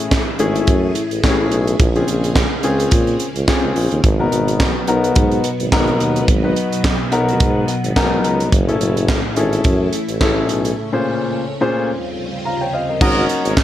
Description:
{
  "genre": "early-eighties boogie funk",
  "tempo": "107 BPM",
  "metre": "4/4",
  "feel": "swing 56% on 16ths",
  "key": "unclear",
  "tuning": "A4 = 439 Hz",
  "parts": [
    { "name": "warm concert grand piano", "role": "accompaniment", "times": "0.0-13.5 s", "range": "A#2 to A#5", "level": "-19 LUFS", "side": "left 2 dB", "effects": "none" },
    { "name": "string machine, full ensemble", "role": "sustained chords", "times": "0.0-13.6 s", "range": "D#2 to G#4", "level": "-24 LUFS", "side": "right 1 dB", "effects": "phaser, ensemble chorus" },
    { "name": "tight funk drum kit", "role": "drums", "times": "0.0-13.6 s", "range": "crash cymbal, handclaps, hi-hat, kick drum, snare drum", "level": "-18 LUFS", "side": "right 1 dB", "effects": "gated reverb" },
    { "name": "warm tuba", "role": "bass", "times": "0.4-13.6 s", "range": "F#1 to A#2", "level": "-19 LUFS", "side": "equal", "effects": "none" },
    { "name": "warm horn section", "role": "second line", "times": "13.0-13.5 s", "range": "F#4 to D#5", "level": "-21 LUFS", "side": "right 2 dB", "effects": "none" }
  ],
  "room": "light reverb, studio reverb",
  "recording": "none",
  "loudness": "-14 LUFS",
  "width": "side -12 dB against mid",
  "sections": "0.0-13.0 A section",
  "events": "grand piano fill 7.4-8.5, 12.2-13.0; break 10.8-13.0",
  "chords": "0.0 F#m9; 1.8 A#m9; 4.0 G#m9; 8.5 F#m9; 10.8 A#m9; 11.9 D#13; 13.0 G#9sus4",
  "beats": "0.12 0.68 1.24 | 1.80 2.36 2.92 3.48 | 4.04 4.60 5.16 5.72 | 6.28 6.84 7.41 7.96 | 8.53 9.09 9.65 10.21 | 10.77 11.33 11.89 12.45 | 13.01 13.57"
}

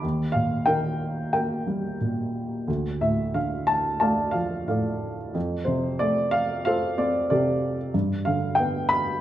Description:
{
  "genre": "classical, lyrical solo piano",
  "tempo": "92 BPM",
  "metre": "4/4",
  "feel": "rubato",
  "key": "unclear",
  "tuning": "A4 = 440 Hz",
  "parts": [
    { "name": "dark upright piano", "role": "solo", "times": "0.0-9.2 s", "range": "D2 to B5", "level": "-23 LUFS", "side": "equal", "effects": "none" }
  ],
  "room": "moderate recital hall reverb, RT60 1.6 s",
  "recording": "none",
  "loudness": "-23 LUFS",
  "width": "side -12 dB against mid",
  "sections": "0.0-9.2 A section",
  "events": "none",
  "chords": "0.0 Eb; 2.7 Dm; 5.4 Fadd9; 7.9 G",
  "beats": "| 0.03 0.68 1.33 2.00 | 2.68 3.35 4.02 4.69 | 5.35 6.00 6.65 7.30 | 7.94 8.58"
}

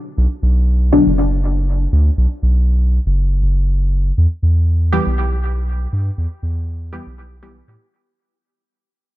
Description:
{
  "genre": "dub techno",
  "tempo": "120 BPM",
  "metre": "4/4",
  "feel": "swing 54% on 16ths",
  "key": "E minor",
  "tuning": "A4 = 440 Hz",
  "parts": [
    { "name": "soft dub sub bass", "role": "bass", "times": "0.2-7.8 s", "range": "F#1 to A2", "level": "-15 LUFS", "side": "equal", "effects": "none" },
    { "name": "filtered dub chord stab", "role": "stabs", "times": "0.9-1.1, 4.9-7.6 s", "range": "B2 to G4", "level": "-18 LUFS", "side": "left 2 dB", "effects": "chorus, phaser, cassette tape, dub echo" }
  ],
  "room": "digital ambience",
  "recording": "echo-heavy mix",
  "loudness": "-14 LUFS",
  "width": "side -15 dB against mid",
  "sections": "0.0-4.2 A section; 4.2-8.2 B section",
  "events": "fade-out 4.2-8.2",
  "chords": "0.0 Bm; 4.2 Em",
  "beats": "| 0.18 0.68 1.18 1.68 | 2.18 2.68 3.18 3.68 | 4.18 4.68 5.18 5.68 | 6.18 6.68 7.18 7.68"
}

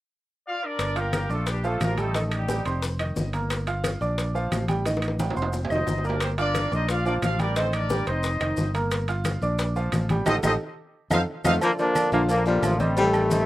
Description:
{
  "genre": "latin, salsa",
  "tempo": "178 BPM",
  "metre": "4/4",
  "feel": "straight",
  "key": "unclear",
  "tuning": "A4 = 440 Hz",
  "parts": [
    { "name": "warm horn section", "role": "melody", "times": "0.5-2.8, 5.7-11.5 s", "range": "G3 to F5", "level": "-28 LUFS", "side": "equal", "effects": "none" },
    { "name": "fingered electric bass", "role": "bass", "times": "0.8-13.4 s", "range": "F1 to F2", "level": "-27 LUFS", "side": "equal", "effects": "none" },
    { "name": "bongos and cowbell", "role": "percussion", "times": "0.8-13.5 s", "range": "none", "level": "-33 LUFS", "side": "left 4 dB", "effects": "none" },
    { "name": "claves", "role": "percussion", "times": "0.8-13.3 s", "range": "none", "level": "-37 LUFS", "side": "left 4 dB", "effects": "none" },
    { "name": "congas", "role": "percussion", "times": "0.8-13.5 s", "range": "none", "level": "-32 LUFS", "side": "left 1 dB", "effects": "none" },
    { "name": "maracas", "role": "percussion", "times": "0.8-13.5 s", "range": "none", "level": "-43 LUFS", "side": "left 4 dB", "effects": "none" },
    { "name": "timbales and agogo bells", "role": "percussion", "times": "0.8-13.3 s", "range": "none", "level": "-34 LUFS", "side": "right 5 dB", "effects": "none" },
    { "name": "clear concert grand piano", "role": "accompaniment", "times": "1.0-13.5 s", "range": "Eb3 to F6", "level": "-29 LUFS", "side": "right 2 dB", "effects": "none" },
    { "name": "warm trombone section", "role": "melody", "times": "11.5-13.5 s", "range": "C3 to D4", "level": "-24 LUFS", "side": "left 1 dB", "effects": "none" },
    { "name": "breathy baritone saxophone", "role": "second line", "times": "11.6-13.5 s", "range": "D3 to G3", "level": "-24 LUFS", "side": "left 3 dB", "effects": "none" }
  ],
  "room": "little or no reverb",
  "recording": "recorded outdoors, with no room sound",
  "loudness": "-22 LUFS",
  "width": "side -16 dB against mid",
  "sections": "0.8-11.6 A section; 11.6-13.5 B section",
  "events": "drum fill 4.9-6.2, 11.1-11.6; band accent 10.3-11.6",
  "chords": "0.0 Bb (rootless); 0.8 Gm7; 1.5 Bb; 2.1 Am7b5; 2.8 F5; 3.5 Gm7; 4.2 Bb; 4.9 Am7b5; 5.5 F5; 6.2 Gm7; 6.9 Bb; 7.6 Am7b5; 8.2 F5; 8.9 Gm7; 9.6 Bb; 10.3 Am7b5; 10.9 F7; 11.6 Bb",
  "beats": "0.11 0.45 | 0.79 1.13 1.47 1.81 | 2.15 2.49 2.83 3.17 | 3.50 3.84 4.18 4.52 | 4.86 5.20 5.54 5.87 | 6.21 6.55 6.89 7.22 | 7.56 7.90 8.24 8.58 | 8.91 9.25 9.59 9.93 | 10.27 10.60 10.94 11.28 | 11.62 11.96 12.29 12.63 | 12.97 13.31"
}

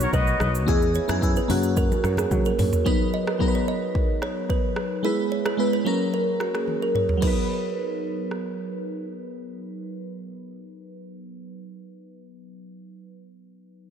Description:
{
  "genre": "afrobeats",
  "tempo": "110 BPM",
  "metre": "4/4",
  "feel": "straight",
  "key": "B major",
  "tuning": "A4 = 440 Hz",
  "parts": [
    { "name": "clear horn section", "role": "second line", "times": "0.0-0.5 s", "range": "F#4 to D#5", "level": "-29 LUFS", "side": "left 2 dB", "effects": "analog delay" },
    { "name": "crystalline FM electric piano", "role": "accompaniment", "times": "0.0-13.9 s", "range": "F#3 to B4", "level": "-27 LUFS", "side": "equal", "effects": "chorus, phaser" },
    { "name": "mellow fretless electric bass", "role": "bass", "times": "0.0-2.7 s", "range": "B1 to F#3", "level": "-25 LUFS", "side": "equal", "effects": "none" },
    { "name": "afro-pop drum kit", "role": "drums", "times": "0.0-8.4 s", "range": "crash cymbal, hi-hat, kick drum, rim click, shaker, toms", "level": "-26 LUFS", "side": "equal", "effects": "none" },
    { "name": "kalimba", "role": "riff", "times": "0.1-8.8 s", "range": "F#4 to D#5", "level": "-28 LUFS", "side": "right 3 dB", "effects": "analog delay" },
    { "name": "congas", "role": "percussion", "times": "0.1-2.7 s", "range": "none", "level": "-34 LUFS", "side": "left 2 dB", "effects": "none" }
  ],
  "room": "light reverb, digital ambience",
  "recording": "none",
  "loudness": "-21 LUFS",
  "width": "side -8 dB against mid",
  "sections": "0.0-2.9 A section; 2.9-7.2 B section; 7.2-11.6 C section",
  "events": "drum fill 2.3-2.9, 6.7-7.2",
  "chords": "0.0 B; 0.7 E; 1.5 F#; 2.9 B; 5.0 E; 5.9 F#; 7.2 B",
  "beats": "0.13 | 0.68 1.22 1.77 2.31 | 2.86 3.40 3.95 4.50 | 5.04 5.59 6.13 6.68 | 7.22 7.77 8.31 8.86 | 9.40 9.95 10.50 11.04"
}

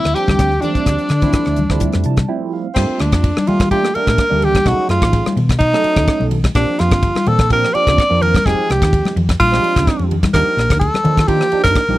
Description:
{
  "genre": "electric jazz fusion",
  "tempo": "127 BPM",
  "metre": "4/4",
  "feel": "straight",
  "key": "G minor",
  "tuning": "A4 = 439 Hz",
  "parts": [
    { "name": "breathy tenor saxophone", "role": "melody", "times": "0.0-12.0 s", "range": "C4 to D5", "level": "-16 LUFS", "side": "equal", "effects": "none" },
    { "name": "overdriven semi-hollow guitar", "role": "second line", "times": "0.0-2.3 s", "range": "D4 to G4", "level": "-26 LUFS", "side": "left 3 dB", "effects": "none" },
    { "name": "barky tine electric piano", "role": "accompaniment", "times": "0.0-12.0 s", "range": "F3 to A5", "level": "-23 LUFS", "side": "right 8 dB", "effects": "overdrive, phaser" },
    { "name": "hollow-body short-scale fingered electric bass", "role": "bass", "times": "0.0-12.0 s", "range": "F1 to G3", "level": "-18 LUFS", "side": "equal", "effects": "none" },
    { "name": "tight funk drum kit", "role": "drums", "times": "0.0-11.9 s", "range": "crash cymbal, hi-hat, kick drum, ride cymbal, rim click", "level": "-17 LUFS", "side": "equal", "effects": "none" },
    { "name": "congas", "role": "percussion", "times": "0.3-12.0 s", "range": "none", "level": "-23 LUFS", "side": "left 3 dB", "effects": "none" }
  ],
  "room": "little or no reverb",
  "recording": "dry, close 1970s-style studio recording",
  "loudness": "-13 LUFS",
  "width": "side -16 dB against mid",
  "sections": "0.0-2.8 A section; 2.8-12.0 B section",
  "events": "tine electric piano fill 1.8-2.8; break 2.3-2.8",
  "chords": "0.0 Dm11; 2.8 Gm9; 4.7 B13; 6.6 Bb69; 8.5 Fm9; 9.4 Bb13; 10.3 Ebmaj7",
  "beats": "0.40 | 0.87 1.34 1.82 2.29 | 2.77 3.24 3.72 4.19 | 4.67 5.14 5.61 6.09 | 6.56 7.03 7.51 7.98 | 8.45 8.93 9.40 9.87 | 10.35 10.82 11.29 11.76"
}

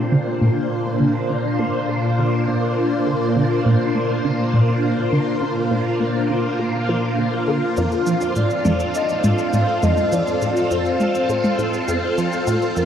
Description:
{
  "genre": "ambient, sequencer-driven space music",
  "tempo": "102 BPM",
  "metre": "4/4",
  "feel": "straight",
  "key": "Bb major",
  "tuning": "A4 = 439 Hz",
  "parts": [
    { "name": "phased string machine", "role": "sustained chords", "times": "0.0-12.9 s", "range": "Bb2 to C5", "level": "-20 LUFS", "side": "equal", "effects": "ensemble chorus, phaser" },
    { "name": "bubbling stepped-filter texture", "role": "texture", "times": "0.0-12.9 s", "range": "F4 to F5", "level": "-30 LUFS", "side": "equal", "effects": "chorus, built-in reverb" },
    { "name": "resonant blip pluck", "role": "riff", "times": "0.1-12.9 s", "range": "F2 to Bb3", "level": "-22 LUFS", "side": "equal", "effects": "phaser, ping-pong delay" },
    { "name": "electronic cabasa and toms", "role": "percussion", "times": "7.8-12.9 s", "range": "none", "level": "-26 LUFS", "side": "left 2 dB", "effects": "none" },
    { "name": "soft octave-layered synth lead", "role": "melody", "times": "8.4-12.9 s", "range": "Bb4 to F5", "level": "-23 LUFS", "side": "equal", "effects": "chorus, phaser, ping-pong delay" }
  ],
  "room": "wet huge ambient reverb, RT60 8.0 s",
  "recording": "worn, warbling old tape, cassette tape, warbly pitch drift",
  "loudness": "-17 LUFS",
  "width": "side -9 dB against mid",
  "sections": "0.0-12.9 A section",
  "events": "filter sweep on synth arpeggio sound 0.0-12.9",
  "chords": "0.0 Bbadd9; 7.8 F",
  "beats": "0.12 | 0.71 1.30 1.89 2.48 | 3.06 3.65 4.24 4.83 | 5.42 6.00 6.59 7.18 | 7.77 8.36 8.95 9.53 | 10.12 10.71 11.30 11.89 | 12.47"
}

